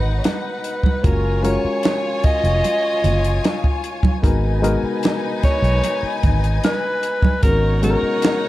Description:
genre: lush 1970s-style soul.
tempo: 75 BPM.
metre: 4/4.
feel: straight.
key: G# dorian.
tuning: A4 = 440 Hz.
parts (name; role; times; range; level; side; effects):
warm studio string section; second line; 0.0-8.5 s; D#4 to G#5; -26 LUFS; left 2 dB; none.
reed electric piano; accompaniment; 0.0-8.5 s; G#3 to A#4; -25 LUFS; left 3 dB; none.
vintage muted fingered electric bass; bass; 0.0-8.1 s; E#1 to B1; -19 LUFS; equal; none.
breathy alto saxophone; melody; 0.2-8.5 s; A#4 to D#5; -22 LUFS; equal; none.
compact cocktail drum kit; drums; 0.2-8.4 s; hi-hat, kick drum, snare drum; -19 LUFS; equal; none.
congas; percussion; 0.3-8.4 s; none; -26 LUFS; right 5 dB; none.
room: small room ambience.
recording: dark, warm production.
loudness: -16 LUFS.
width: side -16 dB against mid.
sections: 0.0-8.5 A section.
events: none.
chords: 0.0 G#m9; 1.0 F#maj9; 4.2 G#m9; 7.4 G#m11.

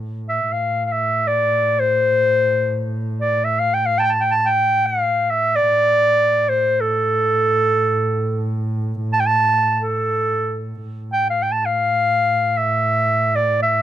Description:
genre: Turkish makam ensemble.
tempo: free time.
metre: none.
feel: none.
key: A makam nihavent.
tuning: A4 = 441 Hz.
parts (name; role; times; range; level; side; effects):
dark double bass; drone; 0.0-13.8 s; A2; -25 LUFS; right 1 dB; none.
clear clarinet; melody; 0.3-13.8 s; A4 to A5; -16 LUFS; equal; none.
room: little or no reverb.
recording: dry, close 1970s-style studio recording.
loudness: -16 LUFS.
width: side -11 dB against mid.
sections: 0.0-10.8 A section; 10.8-13.8 A section.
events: none.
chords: none.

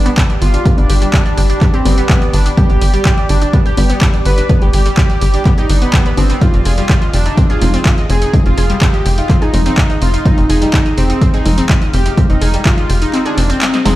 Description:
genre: melodic techno.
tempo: 125 BPM.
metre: 4/4.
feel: straight.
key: unclear.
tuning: A4 = 439 Hz.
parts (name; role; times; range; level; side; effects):
soft supersaw; melody; 0.0-14.0 s; Ab3 to B4; -19 LUFS; equal; sidechain pumping, tape echo.
deep dark ambient pad; sustained chords; 0.0-14.0 s; G4 to F6; -25 LUFS; right 1 dB; chorus, built-in reverb, sidechain pumping.
filtered dub chord stab; stabs; 0.0-14.0 s; F3 to Eb4; -23 LUFS; equal; phaser, sidechain pumping, tape echo.
tight sequencer bass; bass; 0.0-14.0 s; F1 to G1; -13 LUFS; equal; tube saturation, sidechain pumping.
impact; sound effects; 0.0-0.7 s; none; barely audible; none; none.
wide unison pluck; arpeggios; 0.1-13.9 s; G3 to Eb5; -22 LUFS; equal; sidechain pumping, tape echo.
techno drum kit; drums; 0.1-14.0 s; handclaps, hi-hat, snare drum; -21 LUFS; equal; overdrive.
electronic kick drum; drums; 0.2-12.8 s; none; -11 LUFS; equal; none.
room: digital ambience.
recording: played on a big sound system in a bare room, large studio reverb.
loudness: -10 LUFS.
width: side -15 dB against mid.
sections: 0.0-14.0 A section.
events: impact 0.0-0.7; kick drops out 13.1-14.0; drum fill 13.6-14.0.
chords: 0.0 G; 6.4 Fm7.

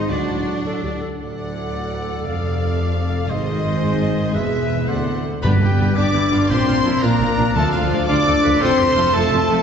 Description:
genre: cinematic.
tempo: 113 BPM (dotted quarters).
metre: 6/8.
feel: straight.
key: unclear.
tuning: A4 = 440 Hz.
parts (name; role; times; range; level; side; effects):
warm symphonic violin section; melody; 0.0-9.6 s; D#5 to D6; -26 LUFS; left 2 dB; none.
mellow clarinet; second line; 0.0-5.3 s; F#4 to A4; -31 LUFS; right 1 dB; none.
rich symphonic violin section; second line; 0.0-9.6 s; A4 to D5; -33 LUFS; left 2 dB; none.
silver concert flute; second line; 0.0-9.6 s; D5 to D6; -31 LUFS; left 2 dB; none.
bright trombone section; sustained chords; 0.0-9.6 s; A2 to D4; -28 LUFS; right 1 dB; none.
mellow French horn section; sustained chords; 0.0-9.6 s; F3 to A4; -23 LUFS; left 2 dB; none.
clear trumpet; stabs; 0.0-9.6 s; F4 to F5; -26 LUFS; right 1 dB; none.
clear symphonic cello section; bass; 0.0-9.6 s; D2 to D#4; -25 LUFS; right 1 dB; none.
rich symphonic viola section; accompaniment; 0.1-9.6 s; D4 to D5; -31 LUFS; right 3 dB; none.
clear symphonic double bass section; bass; 0.1-9.6 s; E1 to D2; -25 LUFS; right 2 dB; none.
timpani; percussion; 0.1-0.6, 5.4-8.0 s; G2 to D3; -24 LUFS; equal; none.
clear oboe; second line; 1.2-9.6 s; D4 to D5; -30 LUFS; right 1 dB; none.
room: wet concert hall reverb, RT60 2.2 s.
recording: heard from further back in the room, nothing above 7.8 kHz.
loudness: -16 LUFS.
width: side -7 dB against mid.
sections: 0.0-1.2 A section; 1.2-5.4 B section; 5.4-9.6 C section.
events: none.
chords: 0.1 D; 2.3 F; 3.3 G#; 4.4 E; 4.9 D7; 5.4 G; 6.5 Bb; 7.6 Dm; 8.6 F.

